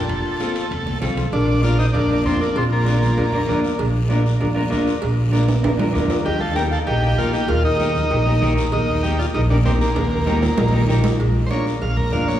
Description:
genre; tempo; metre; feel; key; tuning
latin, cumbia; 194 BPM; 4/4; straight; Bb major; A4 = 440 Hz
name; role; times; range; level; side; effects
combo organ; melody; 0.0-3.6, 6.3-12.4 s; Bb3 to F5; -24 LUFS; equal; none
breathy clarinet; second line; 0.0-3.6, 6.2-10.8 s; F4 to G5; -28 LUFS; left 2 dB; none
upright bass; bass; 0.0-12.4 s; F1 to F2; -20 LUFS; equal; none
guiro; percussion; 0.1-12.4 s; none; -38 LUFS; left 4 dB; none
timbales and cowbell; percussion; 0.1-12.3 s; none; -28 LUFS; right 3 dB; none
mellow electric guitar; accompaniment; 0.4-12.3 s; C4 to Bb4; -24 LUFS; left 1 dB; none
congas; percussion; 0.4-12.4 s; none; -28 LUFS; right 1 dB; none
room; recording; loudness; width
wet church reverb, RT60 2.9 s; recorded in a church or concert hall, small room ambience; -17 LUFS; side -11 dB against mid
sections
0.0-1.3 A section; 1.3-11.2 B section; 11.2-12.4 C section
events
drum fill 0.9-1.3, 5.5-6.3, 10.0-11.2; transistor combo organ solo 11.2-12.4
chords
0.1 F; 1.3 Bb; 6.3 Eb; 11.2 Bb

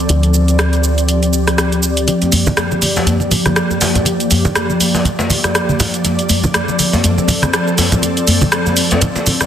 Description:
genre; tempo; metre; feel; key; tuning
afro house; 121 BPM; 4/4; swing 57% on 16ths; G minor; A4 = 440 Hz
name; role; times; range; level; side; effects
ethereal airy pad; sustained chords; 0.0-9.5 s; F3 to D5; -17 LUFS; left 1 dB; ensemble chorus, built-in reverb
woody FM bass; bass; 0.0-2.1 s; D2; -15 LUFS; equal; none
afro-pop drum kit; drums; 0.1-9.5 s; hi-hat, rim click, shaker, toms; -17 LUFS; right 1 dB; high-pass filter on hats, high-pass filter on perc, soft clipping on snare, high-pass filter on snare, high-pass filter on toms
congas; percussion; 2.1-9.5 s; none; -19 LUFS; right 1 dB; none
djembe; percussion; 2.2-9.5 s; none; -19 LUFS; left 1 dB; none
room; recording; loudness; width
light reverb; dense, heavily limited modern master; -12 LUFS; side -9 dB against mid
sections
0.0-2.1 A section; 2.1-9.5 B section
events
build-up 2.1-9.5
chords
0.0 Dm7; 2.1 Gm7; 6.0 Dm7

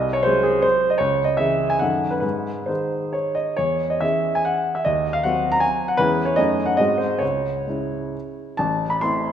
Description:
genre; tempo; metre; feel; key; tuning
classical, romantic triple-time dance for piano with dotted rhythms; 122-170 BPM; 3/4; rubato; C# minor; A4 = 436 Hz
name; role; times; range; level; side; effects
warm baby grand piano; solo; 0.0-9.3 s; A1 to C6; -19 LUFS; equal; none
room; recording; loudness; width
moderate concert hall reverb, RT60 2.1 s; minimal, uncompressed stereo recording; -19 LUFS; side -9 dB against mid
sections
0.0-8.6 A section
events
none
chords
0.0 G#7/B#; 1.0 C#m; 1.8 D#dim/F#; 2.2 G#; 3.6 C#m/E; 4.9 Cdim/Eb; 6.0 C#m/E; 6.4 D#m7b5/F#; 6.8 G#7; 7.2 C#m; 8.6 Am

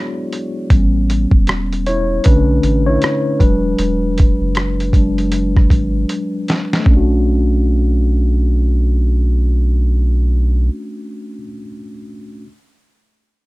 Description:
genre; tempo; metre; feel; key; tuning
lo-fi hip hop; 78 BPM; 4/4; swing 62% on 16ths; B minor; A4 = 436 Hz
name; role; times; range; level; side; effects
mellow tine electric piano; accompaniment; 0.0-12.5 s; D3 to D5; -19 LUFS; left 1 dB; medium stereo tremolo, cassette tape, low-pass filter, plate reverb
lo-fi sampler-style drum kit; drums; 0.3-7.1 s; hi-hat, kick drum, rim click, snare drum; -14 LUFS; equal; none
soft dub sub bass; bass; 0.7-10.7 s; E1 to B1; -16 LUFS; equal; none
room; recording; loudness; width
little or no reverb; dark, warm production; -13 LUFS; side -21 dB against mid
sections
0.0-6.9 A section; 6.9-9.9 B section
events
tine electric piano solo 0.0-6.9; filter sweep on tine electric piano 0.0-6.9; drum fill 6.1-6.9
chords
0.0 E9; 0.7 A7; 2.2 Bm7; 3.4 E9; 6.9 Bm7

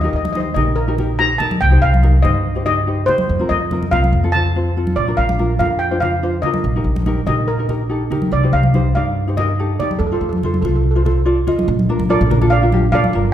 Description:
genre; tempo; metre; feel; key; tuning
calypso; 143 BPM; 4/4; straight; Bb major; A4 = 439 Hz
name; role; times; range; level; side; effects
steel pan; melody; 0.0-13.3 s; A4 to Bb5; -20 LUFS; equal; none
ukulele; accompaniment; 0.0-13.3 s; C4 to Eb5; -22 LUFS; left 1 dB; none
upright bass; bass; 0.0-13.3 s; G1 to Bb2; -17 LUFS; equal; none
congas; percussion; 0.2-13.1 s; none; -24 LUFS; right 1 dB; none
room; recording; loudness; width
moderate concert hall reverb, RT60 1.9 s; minimal, uncompressed stereo recording; -14 LUFS; side -11 dB against mid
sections
0.0-11.7 A section; 11.7-13.3 B section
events
none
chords
0.0 Eb6; 1.6 Cm; 3.3 Fsus4; 4.1 F; 5.0 Bbadd9; 6.7 Eb/Bb; 8.3 Cmadd9; 10.0 F; 11.7 Bb

